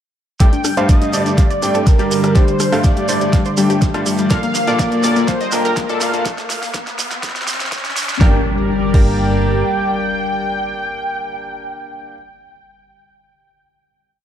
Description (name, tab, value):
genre	progressive house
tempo	123 BPM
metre	4/4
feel	straight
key	G minor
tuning	A4 = 440 Hz
part	wide unison lead	melody	0.4-12.1 s	Bb4 to G5	-22 LUFS	equal	analog chorus, sidechain pumping, digital delay
part	lush unison pad	sustained chords	0.4-11.4 s	D3 to D5	-22 LUFS	equal	chorus, sidechain pumping
part	analog pluck	arpeggios	0.4-12.1 s	G3 to Eb5	-22 LUFS	left 3 dB	chorus, sidechain pumping, digital delay
part	bright concert grand piano	stabs	0.4-12.1 s	G2 to A5	-21 LUFS	right 1 dB	sidechain pumping, low-pass filter, digital delay
part	electronic kick drum	drums	0.4-9.1 s	none	-13 LUFS	equal	overdrive
part	pop drum kit	drums	0.4-9.1 s	crash cymbal, hi-hat, rim click, snare drum	-26 LUFS	equal	overdrive, high-pass filter on snare, sidechain pumping on hats, high-pass filter on hats, sidechain pumping on cymbals, high-pass filter on cymbals, high-pass filter on room
part	shekere	percussion	0.4-8.2 s	none	-27 LUFS	right 5 dB	none
part	riser and impact	sound effects	4.0-11.4 s	none	-27 LUFS	equal	none
part	plucky analog bass	bass	0.6-9.6 s	F1 to D2	-24 LUFS	equal	none
room	light reverb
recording	dark, warm production, high-pass filter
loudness	-14 LUFS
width	side -10 dB against mid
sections	0.4-8.2 build; 8.2-12.1 final chord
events	build-up 0.4-8.2; drum fill 0.4-8.2; filter sweep on synth pluck 0.4-6.3; filter sweep 0.4-8.2; riser 4.0-8.2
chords	0.4 Gsus2; 4.3 Bbmaj7; 8.2 Gm